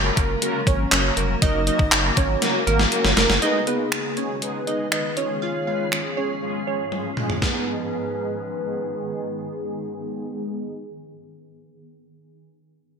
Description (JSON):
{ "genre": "dance-pop", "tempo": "120 BPM", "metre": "4/4", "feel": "straight", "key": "G# dorian", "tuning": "A4 = 438 Hz", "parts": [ { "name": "mellow synth brass", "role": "accompaniment", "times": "0.0-10.8 s", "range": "F#3 to B4", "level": "-28 LUFS", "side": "left 2 dB", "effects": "chorus, phaser, sidechain pumping, low-pass filter" }, { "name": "granular cloud pad", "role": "sustained chords", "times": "0.0-10.8 s", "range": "G#2 to G#4", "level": "-31 LUFS", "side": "left 1 dB", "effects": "built-in reverb, lush chorus, sidechain pumping, low-pass filter" }, { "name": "saturated sub bass", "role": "bass", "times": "0.0-3.4 s", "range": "E#1 to G#1", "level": "-24 LUFS", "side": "equal", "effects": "sidechain pumping" }, { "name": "glassy wavetable pluck", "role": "melody", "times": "0.2-8.9 s", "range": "A#3 to E#5", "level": "-26 LUFS", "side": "right 4 dB", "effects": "chorus, low-pass filter, ping-pong delay" }, { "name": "gated 80s digital drum machine", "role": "drums", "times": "0.2-7.5 s", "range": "finger snaps, handclaps, hi-hat, kick drum, snare drum, toms", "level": "-21 LUFS", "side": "equal", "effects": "gated reverb, gated reverb snare" }, { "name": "hollow clarinet-like synth lead", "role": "melody", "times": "3.4-10.8 s", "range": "G#4 to C#5", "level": "-30 LUFS", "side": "left 3 dB", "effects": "chorus, low-pass filter, ping-pong delay" } ], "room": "light reverb", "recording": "bright 1980s-style digital production", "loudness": "-20 LUFS", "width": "side -6 dB against mid", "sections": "0.0-3.4 A section; 3.4-7.4 B section; 7.4-11.4 C section", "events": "drop 0.0-3.4; drum fill 2.4-3.4, 6.9-7.4; filter sweep 3.4-7.4", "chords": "0.0 F#; 3.4 G#m; 5.2 C#/G#; 7.4 G#m" }